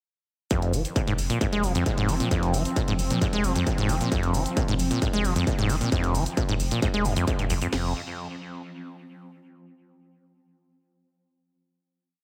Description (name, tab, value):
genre	driving peak-time techno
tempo	133 BPM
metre	4/4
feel	straight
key	F minor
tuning	A4 = 441 Hz
part	acid bass, saw	riff	0.5-7.9 s	F2 to Ab3	-29 LUFS	equal	sidechain pumping, delay
part	swarming drone	drone	1.3-7.8 s	F3 to C4	-35 LUFS	equal	built-in reverb, sidechain pumping
part	electronic hi-hat and shaker	drums	0.5-7.7 s	none	-38 LUFS	equal	sidechain pumping on hats, sidechain pumping on perc
part	techno drum kit	drums	0.5-7.8 s	crash cymbal, kick drum, snare drum	-30 LUFS	equal	distortion
part	warm sub bass	bass	0.6-7.9 s	F1	-33 LUFS	equal	sidechain pumping, low-pass filter
room	moderate stone room reverb, RT60 1.3 s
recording	heavily compressed radio sound, multiband compression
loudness	-25 LUFS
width	mono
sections	0.5-7.7 drop; 7.7-9.5 final note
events	drop 0.5-7.7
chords	0.5 F5; 7.7 N.C.